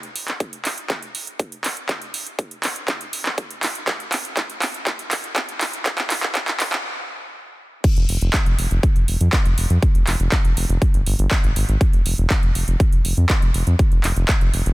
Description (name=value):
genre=progressive house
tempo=121 BPM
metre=4/4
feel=straight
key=F minor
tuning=A4 = 438 Hz
part: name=big-room dance drum kit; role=drums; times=0.0-14.7 s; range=crash cymbal, handclaps, hi-hat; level=-24 LUFS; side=right 1 dB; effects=none
part: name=electronic kick drum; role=drums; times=0.4-14.4 s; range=none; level=-18 LUFS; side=equal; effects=high-pass filter on kick
part: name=round analog bass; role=bass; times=8.0-14.7 s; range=F1 to F2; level=-19 LUFS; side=equal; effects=sidechain pumping
room=little or no reverb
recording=dense, heavily limited modern master, high-pass filter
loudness=-18 LUFS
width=side -20 dB against mid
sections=0.0-7.8 A section; 7.8-14.7 B section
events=build-up 0.0-7.8; drum fill 0.0-6.8; stop 6.8-7.8; drop 7.8-14.7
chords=none